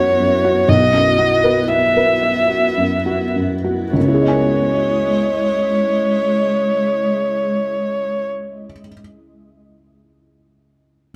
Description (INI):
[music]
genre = neoclassical piano and strings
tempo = 50-62 BPM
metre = 3/4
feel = rubato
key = C# minor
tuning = A4 = 440 Hz
[part]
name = muted violin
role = melody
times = 0.0-8.3 s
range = C#5 to E5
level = -19 LUFS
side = equal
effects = none
[part]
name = felt-muted upright piano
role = accompaniment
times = 0.0-11.1 s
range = B1 to G#5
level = -21 LUFS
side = equal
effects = none
[part]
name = granular cloud pad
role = sustained chords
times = 0.0-8.3 s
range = G#3 to D#5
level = -24 LUFS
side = equal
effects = built-in reverb
[sound]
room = light reverb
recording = none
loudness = -17 LUFS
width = mono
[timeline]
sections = 0.0-4.0 A section; 4.0-7.5 B section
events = slowing down 0.0-4.0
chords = 0.0 Bsus4; 4.0 C#madd9